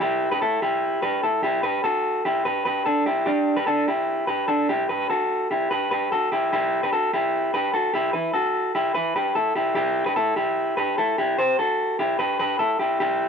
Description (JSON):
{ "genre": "indie pop", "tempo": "148 BPM", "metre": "4/4", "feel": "straight", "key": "unclear", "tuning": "A4 = 441 Hz", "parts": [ { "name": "electric guitar through a small old amp", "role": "solo", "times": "0.0-13.3 s", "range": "D4 to C5", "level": "-20 LUFS", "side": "equal", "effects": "none" } ], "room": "moderate studio reverb, RT60 0.5 s", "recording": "worn, warbling old tape, cassette tape, warbly pitch drift", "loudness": "-20 LUFS", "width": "side -6 dB against mid", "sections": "0.0-1.6 A section; 1.6-13.3 A section", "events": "none", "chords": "0.0 Em; 1.6 G; 4.9 Emadd9; 11.2 C (rootless)" }